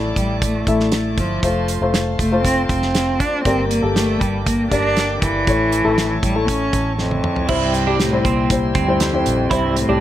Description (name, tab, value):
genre	piano-driven pop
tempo	119 BPM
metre	4/4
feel	straight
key	unclear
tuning	A4 = 440 Hz
part	warm upright piano	accompaniment	0.0-10.0 s	G2 to E5	-21 LUFS	left 3 dB	none
part	bright tonewheel organ	sustained chords	0.0-10.0 s	E4 to D6	-30 LUFS	right 1 dB	slow rotary speaker
part	vintage muted fingered electric bass	bass	0.0-10.0 s	F1 to D2	-24 LUFS	right 1 dB	none
part	warm cello	melody	0.2-10.0 s	F2 to D4	-21 LUFS	right 1 dB	none
part	damped 70s drum kit	drums	0.2-9.9 s	crash cymbal, hi-hat, kick drum, snare drum, toms	-22 LUFS	right 1 dB	none
part	twelve-string electric guitar	riff	7.5-10.0 s	C4 to E4	-23 LUFS	right 7 dB	spring reverb
room	light reverb, studio reverb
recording	none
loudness	-16 LUFS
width	side -12 dB against mid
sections	0.0-7.5 A section; 7.5-10.0 B section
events	drum fill 7.0-7.5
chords	0.0 Asus4; 1.4 F; 3.5 Gm; 5.5 A; 7.5 C